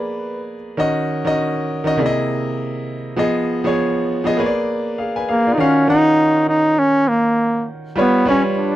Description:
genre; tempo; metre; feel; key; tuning
soul; 100 BPM; 4/4; swing 58% on 16ths; Eb minor; A4 = 440 Hz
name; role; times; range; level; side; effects
breathy flugelhorn; melody; 0.0-0.5, 5.3-8.8 s; Bb3 to Cb5; -15 LUFS; equal; none
clear concert grand piano; accompaniment; 0.0-8.8 s; C3 to Ab5; -19 LUFS; equal; none
room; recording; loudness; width
light reverb; dry, close 1970s-style studio recording; -15 LUFS; side -14 dB against mid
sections
0.0-5.6 A section; 5.6-8.8 B section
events
none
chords
0.0 Bb7b9; 0.8 Ebm7; 2.0 C7alt; 3.2 Fm7b5; 4.4 Bb7b9; 5.6 Ebm9; 8.0 G7#11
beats
0.18 | 0.78 1.38 1.98 2.58 | 3.18 3.78 4.38 4.98 | 5.58 6.18 6.78 7.38 | 7.98 8.58

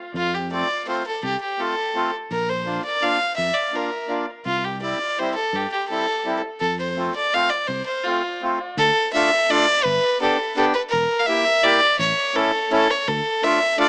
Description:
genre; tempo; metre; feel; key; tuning
alpine folk, alpine dance band; 167 BPM; 3/4; straight; F major, D minor from 8.8 s; A4 = 441 Hz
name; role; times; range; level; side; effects
sustaining fretless electric bass; bass; 0.1-13.2 s; E1 to G2; -29 LUFS; equal; ensemble chorus
rich fiddle; melody; 0.2-13.9 s; F4 to F5; -20 LUFS; equal; analog delay
accordion; accompaniment; 0.5-13.9 s; G3 to G4; -22 LUFS; equal; none
room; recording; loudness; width
moderate small room reverb, RT60 0.5 s; small speaker sound; -18 LUFS; side -38 dB against mid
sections
0.1-8.8 A section; 8.8-13.9 B section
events
break 8.4-8.8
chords
0.1 F; 2.3 Bb; 4.5 C; 6.6 F; 8.8 Dm; 9.9 Gadd9; 10.9 Edim; 12.0 A; 13.1 Dm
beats
| 0.14 0.51 0.87 | 1.23 1.58 1.94 | 2.30 2.66 3.02 | 3.38 3.74 4.10 | 4.46 4.82 5.18 | 5.54 5.90 6.25 | 6.61 6.97 7.33 | 7.69 8.05 8.42 | 8.78 9.14 9.50 | 9.86 10.21 10.57 | 10.93 11.28 11.64 | 11.99 12.35 12.71 | 13.07 13.43 13.79

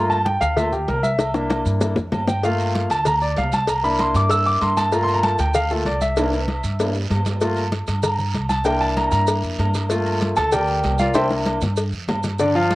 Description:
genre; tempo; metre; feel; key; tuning
latin, salsa; 193 BPM; 4/4; straight; unclear; A4 = 440 Hz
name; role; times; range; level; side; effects
clear concert grand piano; accompaniment; 0.0-12.8 s; D3 to E6; -20 LUFS; equal; cassette tape
upright bass; bass; 0.0-12.8 s; C2 to G2; -24 LUFS; equal; none
agogo bells and timbales; percussion; 0.1-12.7 s; none; -29 LUFS; right 2 dB; none
congas; percussion; 0.1-12.8 s; none; -28 LUFS; equal; none
maracas; percussion; 0.1-12.8 s; none; -36 LUFS; right 6 dB; none
cowbell and bongos; percussion; 0.3-12.8 s; none; -25 LUFS; left 2 dB; none
guiro; percussion; 2.4-12.8 s; none; -36 LUFS; right 6 dB; none
room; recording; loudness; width
moderate spring reverb, RT60 1.3 s; home recording on cassette; -18 LUFS; side -18 dB against mid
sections
0.0-12.4 A section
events
grand piano solo 0.0-12.4; drum fill 1.2-2.4, 6.2-7.4, 11.1-12.4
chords
0.0 Gm7; 1.2 C7; 2.4 Gm7; 3.7 C7; 4.9 Gm7; 6.2 C7; 7.4 Gm7; 8.7 C7; 9.9 Gm7; 11.1 C7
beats
0.26 0.57 0.88 | 1.19 1.50 1.81 2.13 | 2.44 2.75 3.06 3.37 | 3.68 3.99 4.30 4.61 | 4.92 5.24 5.55 5.86 | 6.17 6.48 6.79 7.10 | 7.41 7.72 8.04 8.35 | 8.66 8.97 9.28 9.59 | 9.90 10.21 10.53 10.84 | 11.15 11.46 11.77 12.08 | 12.39 12.70

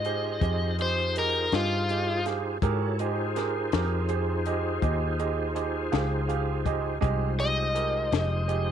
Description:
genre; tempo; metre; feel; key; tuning
slow blues; 54 BPM (dotted quarters); 12/8; straight; F minor; A4 = 440 Hz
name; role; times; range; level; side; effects
overdriven slide guitar; melody; 0.0-8.7 s; F4 to Eb5; -28 LUFS; left 2 dB; none
bright tonewheel organ; sustained chords; 0.0-8.7 s; Ab3 to Db5; -33 LUFS; left 1 dB; slow rotary speaker, chorus vibrato
vintage muted fingered electric bass; bass; 0.0-8.7 s; F1 to Ab2; -30 LUFS; left 1 dB; none
compact cocktail drum kit; drums; 0.0-8.7 s; hi-hat, kick drum, snare drum; -31 LUFS; left 6 dB; none
clear concert grand piano; accompaniment; 0.1-8.7 s; G4 to F5; -32 LUFS; right 12 dB; none
room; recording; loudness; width
little or no reverb; 1960s-style stereo with parts hard left and right; -25 LUFS; side -9 dB against mid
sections
0.0-8.7 A section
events
none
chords
0.0 Fm7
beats
0.41 1.52 | 2.62 3.72 4.82 5.92 | 7.02 8.12

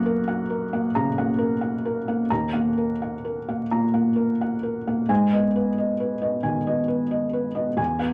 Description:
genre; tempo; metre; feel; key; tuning
neoclassical minimalist piano; 89 BPM; 4/4; rubato; G# minor; A4 = 437 Hz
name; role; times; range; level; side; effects
felt-muted upright piano; solo; 0.0-8.1 s; D#2 to A#5; -24 LUFS; equal; none
room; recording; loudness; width
wet club reverb, RT60 0.5 s; vinyl crackle; -24 LUFS; mono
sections
0.0-8.1 A section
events
none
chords
0.0 F#; 2.3 D#m; 5.1 G#m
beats
0.28 0.94 1.61 | 2.30 3.00 3.70 4.39 | 5.09 5.77 6.44 7.11 | 7.79

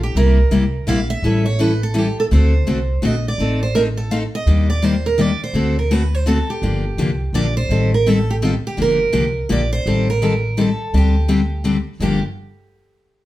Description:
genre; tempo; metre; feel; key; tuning
acoustic string swing (jazz manouche); 167 BPM; 3/4; swing 62% on 8ths; G minor; A4 = 440 Hz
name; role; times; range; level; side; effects
picked steel-string acoustic guitar; melody; 0.0-12.2 s; F4 to F5; -22 LUFS; right 3 dB; none
upright bass; bass; 0.0-12.2 s; G1 to Eb2; -18 LUFS; equal; none
picked steel-string acoustic guitar; accompaniment; 0.2-12.2 s; G2 to A4; -19 LUFS; left 2 dB; none
room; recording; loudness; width
moderate studio reverb, RT60 0.7 s; heard from further back in the room; -15 LUFS; side -15 dB against mid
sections
0.0-7.7 A section; 7.7-12.0 B section; 12.0-13.1 C section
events
none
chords
0.2 C7; 1.2 A7; 2.3 D7; 3.4 Adim; 4.5 Ebmaj7; 5.5 D7; 6.6 Gm7; 7.7 Am7b5; 8.8 Gm7; 9.8 Am7b5; 10.9 D7sus4; 12.0 Gm7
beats
| 0.16 0.52 0.87 | 1.23 1.59 1.95 | 2.31 2.67 3.03 | 3.39 3.75 4.11 | 4.46 4.82 5.18 | 5.54 5.90 6.26 | 6.62 6.98 7.34 | 7.70 8.05 8.41 | 8.77 9.13 9.49 | 9.85 10.21 10.57 | 10.93 11.29 11.65 | 12.01

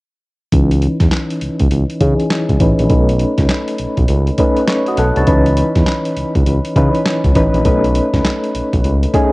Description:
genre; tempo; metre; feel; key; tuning
R&B, new jack swing; 101 BPM; 4/4; swing 63% on 16ths; C# minor; A4 = 439 Hz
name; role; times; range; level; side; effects
soft electric-piano-like synth keys; accompaniment; 0.5-9.3 s; E3 to A5; -16 LUFS; equal; chorus, tremolo, low-pass filter
smooth synth bass; bass; 0.5-9.1 s; A1 to C#3; -15 LUFS; equal; none
boom bap sampler-style drum kit; drums; 0.5-9.3 s; handclaps, hi-hat, kick drum, snare drum; -17 LUFS; equal; cassette tape
room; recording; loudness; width
light reverb, digital ambience; home recording on cassette; -12 LUFS; side -22 dB against mid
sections
0.5-9.3 A section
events
filter sweep on synth keys 0.5-9.3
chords
0.5 C#m9; 2.9 B9; 5.3 C#m9; 7.7 B9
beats
| 0.52 1.12 1.71 2.30 | 2.90 3.49 4.09 4.68 | 5.27 5.87 6.46 7.06 | 7.65 8.24 8.84

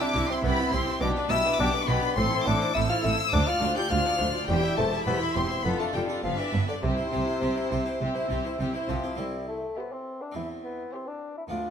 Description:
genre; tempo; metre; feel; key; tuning
classical, baroque-style concerto movement with solo episodes; 103 BPM; 4/4; straight; C major; A4 = 440 Hz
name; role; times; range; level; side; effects
mellow bassoon; melody; 0.0-11.7 s; C3 to G4; -30 LUFS; left 2 dB; none
rich chamber violin section; melody; 0.0-11.4 s; C5 to G6; -30 LUFS; left 4 dB; none
rich chamber violin section; second line; 0.0-11.4 s; E4 to E5; -35 LUFS; left 4 dB; none
harpsichord; accompaniment; 0.0-11.7 s; C2 to F5; -35 LUFS; right 1 dB; none
rich chamber viola section; accompaniment; 0.0-11.4 s; B3 to G4; -34 LUFS; right 2 dB; none
warm studio cello section; bass; 0.1-11.7 s; C2 to C3; -32 LUFS; right 2 dB; none
rich chamber double bass section; bass; 0.2-9.0 s; E1 to D2; -32 LUFS; right 2 dB; none
room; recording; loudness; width
moderate recital hall reverb, RT60 1.5 s; none; -24 LUFS; side -8 dB against mid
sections
0.0-9.2 A section; 9.2-11.7 B section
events
none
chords
0.0 C; 1.0 G/B; 2.2 Am; 3.3 Dm7; 4.5 C/E; 5.7 Dm/F; 6.2 G; 6.8 C; 10.4 C/E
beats
0.44 1.02 1.60 | 2.18 2.75 3.33 3.91 | 4.49 5.07 5.66 6.24 | 6.83 7.42 8.01 8.60 | 9.19 9.77 10.35 10.93 | 11.52

